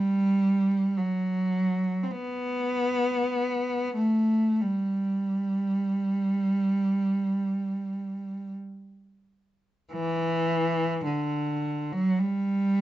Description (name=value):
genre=classical, free, expressive piece for unaccompanied cello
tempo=free time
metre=none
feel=none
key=G major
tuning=A4 = 440 Hz
part: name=rich cello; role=solo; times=0.0-12.8 s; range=D3 to C4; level=-24 LUFS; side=right 1 dB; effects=none
room=light reverb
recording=dark, warm production, nothing above 7.8 kHz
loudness=-24 LUFS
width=side -14 dB against mid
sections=0.0-9.9 A section; 9.9-12.8 A section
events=none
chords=none